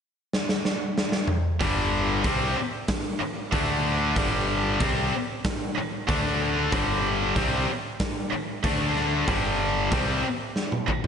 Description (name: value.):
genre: hard rock.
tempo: 94 BPM.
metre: 4/4.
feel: straight.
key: unclear.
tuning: A4 = 440 Hz.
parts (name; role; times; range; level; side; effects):
big rock drum kit; drums; 0.3-11.1 s; hi-hat, kick drum, snare drum, toms; -27 LUFS; right 1 dB; none.
heavy high-gain guitar; riff; 1.6-10.9 s; G2 to D4; -27 LUFS; left 9 dB; distortion.
heavy high-gain guitar; riff; 1.6-10.9 s; G2 to D4; -29 LUFS; right 9 dB; distortion.
growling fingered electric bass; bass; 1.6-10.9 s; G1 to D2; -30 LUFS; equal; overdrive.
room: moderate lush hall reverb, RT60 2.1 s.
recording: big arena sound, nothing above 10.5 kHz.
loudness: -23 LUFS.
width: side -7 dB against mid.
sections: 0.0-1.6 A section; 1.6-11.1 B section.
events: drum fill 0.3-1.6, 10.6-11.1.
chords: 0.0 N.C.; 1.6 G5; 3.5 D5; 4.2 G5; 6.1 D5; 6.7 G5; 8.6 D5; 9.3 G5.